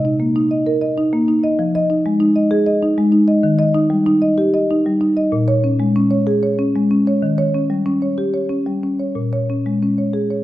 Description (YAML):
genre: classical, contemporary piece for solo marimba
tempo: 63 BPM (dotted quarters)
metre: 6/8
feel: rubato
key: Bb dorian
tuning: A4 = 440 Hz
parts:
  - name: marimba with medium mallets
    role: solo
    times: 0.0-10.4 s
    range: Bb2 to Eb5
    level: -14 LUFS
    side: equal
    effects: none
room: wet recital hall reverb, RT60 1.3 s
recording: minimal, uncompressed stereo recording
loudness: -14 LUFS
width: side -15 dB against mid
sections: 0.0-10.4 A section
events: none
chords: 0.0 Cm7; 1.6 Fm7; 3.4 Eb; 5.3 Bbm7; 7.2 Eb7; 9.2 Bbm7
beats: 0.66 | 1.59 2.51 | 3.43 4.38 | 5.33 6.27 | 7.22 8.17 | 9.16 10.14